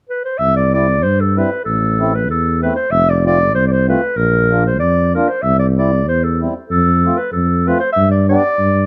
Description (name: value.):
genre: alpine folk, alpine dance band.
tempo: 95 BPM.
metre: 2/4.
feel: swing 54% on 8ths.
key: C major.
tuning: A4 = 440 Hz.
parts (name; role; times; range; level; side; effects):
warm clarinet; melody; 0.1-8.9 s; A4 to E5; -18 LUFS; equal; plate reverb.
mellow tuba; bass; 0.4-8.9 s; F1 to G2; -18 LUFS; equal; none.
mellow accordion; accompaniment; 0.7-8.4 s; G3 to G4; -22 LUFS; equal; none.
room: light reverb.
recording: none.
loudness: -15 LUFS.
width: mono.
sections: 0.4-8.9 A section.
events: none.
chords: 0.4 C; 1.7 Am; 2.9 F; 4.2 Bb; 5.4 C; 6.7 F; 8.0 G.